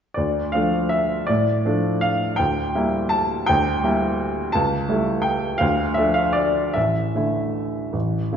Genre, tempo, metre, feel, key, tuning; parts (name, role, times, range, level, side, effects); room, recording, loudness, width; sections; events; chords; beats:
classical, piano waltz; 147-179 BPM; 3/4; rubato; D minor; A4 = 441 Hz
clear baby grand piano; solo; 0.1-8.4 s; A1 to A5; -19 LUFS; equal
wet recital hall reverb, RT60 1.5 s; heard from further back in the room, nothing above 7.5 kHz; -19 LUFS; side -8 dB against mid
0.2-8.4 A section
0.2 Dm; 2.4 Em7b5/D; 4.5 A7/C#; 5.6 Dm; 6.8 Asus4
| 0.17 0.54 0.92 | 1.29 1.65 2.02 | 2.39 2.75 3.12 | 3.48 3.83 4.19 | 4.55 4.89 5.26 | 5.62 5.98 6.37 | 6.76 7.15 7.54 | 7.94 8.33